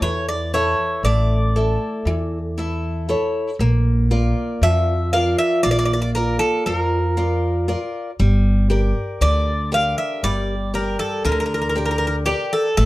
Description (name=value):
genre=greek folk, Greek bouzouki band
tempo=118 BPM (eighths)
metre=9/8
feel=straight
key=unclear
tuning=A4 = 440 Hz
part: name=Greek bouzouki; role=melody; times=0.0-12.8 s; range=G4 to F5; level=-21 LUFS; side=equal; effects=plate reverb
part: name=picked old ladder-braced acoustic guitar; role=accompaniment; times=0.0-12.9 s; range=D3 to E5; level=-23 LUFS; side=equal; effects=none
part: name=upright bass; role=bass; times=0.0-12.9 s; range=G1 to F2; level=-20 LUFS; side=equal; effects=none
room=moderate studio reverb, RT60 0.5 s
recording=dark, warm production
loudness=-17 LUFS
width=side -18 dB against mid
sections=0.0-12.9 A section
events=none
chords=0.0 A; 3.6 Bb; 8.2 Gm